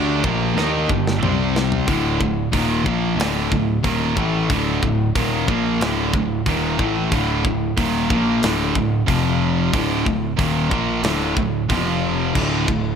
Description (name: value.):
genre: heavy metal.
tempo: 92 BPM.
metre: 4/4.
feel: straight.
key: unclear.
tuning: A4 = 436 Hz.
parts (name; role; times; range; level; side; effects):
chamber organ, sparkling flutes; sustained chords; 0.0-1.9 s; C4 to A5; -32 LUFS; right 2 dB; none.
high-gain distorted guitar; riff; 0.0-12.9 s; D2 to Eb4; -22 LUFS; right 8 dB; distortion.
sludgy distorted guitar; riff; 0.0-12.9 s; D2 to Eb4; -22 LUFS; left 6 dB; overdrive.
picked electric bass; bass; 0.0-13.0 s; D1 to Eb2; -26 LUFS; equal; none.
tight metal drum kit; drums; 0.2-12.8 s; crash cymbal, hi-hat, kick drum, snare drum, toms; -24 LUFS; equal; none.
room: light reverb.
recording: none.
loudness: -17 LUFS.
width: side -7 dB against mid.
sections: 0.0-1.9 A section; 1.9-13.0 B section.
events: drum fill 0.6-1.9.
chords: 0.0 G5; 1.2 C5; 1.9 Dm; 9.1 F5; 9.7 Dm; 11.7 F5; 12.3 D5.